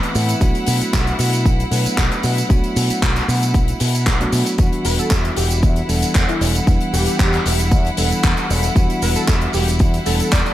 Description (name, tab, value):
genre	nu-disco, nu disco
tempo	115 BPM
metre	4/4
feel	straight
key	E minor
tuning	A4 = 438 Hz
part	bell-like tine electric piano	accompaniment	0.0-10.5 s	E3 to F#5	-23 LUFS	equal	sidechain pumping, ping-pong delay
part	clear studio violin section	sustained chords	0.0-10.5 s	E4 to F#5	-26 LUFS	left 1 dB	sidechain pumping
part	damped 70s drum kit	drums	0.0-10.5 s	handclaps, hi-hat, shaker	-22 LUFS	left 1 dB	small room ambience
part	tambourine	percussion	0.0-10.5 s	none	-34 LUFS	right 5 dB	none
part	fingered electric bass with an envelope filter	bass	0.2-10.4 s	E1 to B2	-20 LUFS	equal	none
part	electronic kick drum	drums	0.4-10.4 s	none	-17 LUFS	equal	small room ambience
part	wide unison lead	melody	4.9-10.5 s	E4 to D5	-26 LUFS	right 1 dB	tape echo
room	small room ambience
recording	none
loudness	-15 LUFS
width	side -13 dB against mid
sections	0.0-10.5 A section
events	none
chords	0.4 Bm7; 4.6 Em9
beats	| 0.41 0.94 1.46 1.98 | 2.50 3.02 3.54 4.07 | 4.59 5.11 5.63 6.15 | 6.67 7.20 7.72 8.24 | 8.76 9.28 9.80 10.33